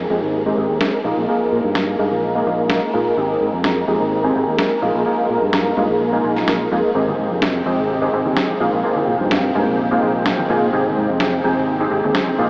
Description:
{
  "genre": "filtered disco house",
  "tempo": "127 BPM",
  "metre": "4/4",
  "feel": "straight",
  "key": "unclear",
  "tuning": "A4 = 443 Hz",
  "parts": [
    { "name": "funky polysynth comp", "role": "accompaniment", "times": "0.0-12.5 s", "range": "F3 to Ab4", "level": "-18 LUFS", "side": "equal", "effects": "chorus, phaser, low-pass filter" },
    { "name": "string machine, full ensemble", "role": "sustained chords", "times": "0.0-12.5 s", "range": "C4 to Bb5", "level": "-22 LUFS", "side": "equal", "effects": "ensemble chorus, low-pass filter" },
    { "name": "fingered electric bass", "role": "bass", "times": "0.0-12.5 s", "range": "Ab1 to Bb2", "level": "-24 LUFS", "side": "equal", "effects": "low-pass filter" },
    { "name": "electronic snare drum", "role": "drums", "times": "0.8-12.2 s", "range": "none", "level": "-24 LUFS", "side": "equal", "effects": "overdrive" },
    { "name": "tambourine and congas", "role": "percussion", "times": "7.0-12.4 s", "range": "none", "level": "-31 LUFS", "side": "equal", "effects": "none" }
  ],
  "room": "wet huge ambient reverb, RT60 8.0 s",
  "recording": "dreamy mix soaked in reverb, AM radio sound",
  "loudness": "-15 LUFS",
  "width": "side -33 dB against mid",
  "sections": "0.0-12.5 A section",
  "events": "filter sweep 0.0-12.5",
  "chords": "0.0 Abmaj7; 1.0 Bb7sus4; 3.2 Abmaj7; 4.8 Bb7sus4; 7.0 Abmaj7; 8.6 Bb7sus4; 10.7 Abmaj7"
}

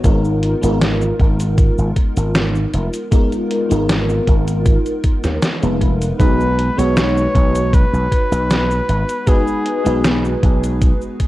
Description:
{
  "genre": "vaporwave",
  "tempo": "78 BPM",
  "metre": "4/4",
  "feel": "straight",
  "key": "G# dorian",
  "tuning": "A4 = 440 Hz",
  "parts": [
    { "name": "FM electric piano with soft pad layer", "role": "accompaniment", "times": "0.0-11.3 s", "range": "G#3 to B4", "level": "-20 LUFS", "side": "equal", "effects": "ensemble chorus, tape echo" },
    { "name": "slap bass with an envelope filter", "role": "bass", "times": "0.0-10.9 s", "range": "E#1 to D#2", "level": "-18 LUFS", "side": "equal", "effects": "none" },
    { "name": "detuned 8-bit digital drum machine", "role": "drums", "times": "0.0-11.3 s", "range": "cabasa, hi-hat, snare drum", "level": "-21 LUFS", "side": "equal", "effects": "none" },
    { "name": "electronic kick drum", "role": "drums", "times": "0.0-11.3 s", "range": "none", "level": "-14 LUFS", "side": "equal", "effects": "none" },
    { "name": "clear flugelhorn", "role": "melody", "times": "6.2-10.4 s", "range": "G#4 to C#5", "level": "-21 LUFS", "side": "equal", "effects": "tape echo" }
  ],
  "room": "light reverb",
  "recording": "worn, warbling old tape, cassette tape, warbly pitch drift",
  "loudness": "-14 LUFS",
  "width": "side -16 dB against mid",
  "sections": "0.0-11.3 A section",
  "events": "none",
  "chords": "0.0 G#m69; 6.2 B6"
}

